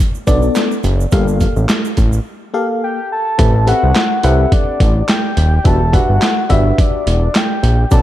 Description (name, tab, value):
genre	early-eighties boogie funk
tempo	106 BPM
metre	4/4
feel	swing 56% on 16ths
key	A dorian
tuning	A4 = 440 Hz
part	tube shaker	percussion	0.1-2.2, 7.9-8.0 s	none	-36 LUFS	right 16 dB	none
part	FM electric piano	accompaniment	0.3-8.0 s	Bb3 to F#5	-20 LUFS	left 2 dB	chorus
part	fat analog bass	bass	0.3-8.0 s	D#1 to C2	-13 LUFS	equal	none
part	boom bap sampler-style drum kit	drums	0.3-8.0 s	handclaps, hi-hat, kick drum, snare drum	-15 LUFS	equal	overdrive
part	soft octave-layered synth lead	melody	2.8-8.0 s	D5 to A5	-19 LUFS	left 1 dB	chorus, tape echo
room	light reverb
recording	none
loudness	-12 LUFS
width	side -13 dB against mid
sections	0.0-3.4 A section; 3.4-8.0 B section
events	break 2.3-3.4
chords	0.0 Bm7; 1.1 Gm9; 3.4 Am9; 5.7 Em9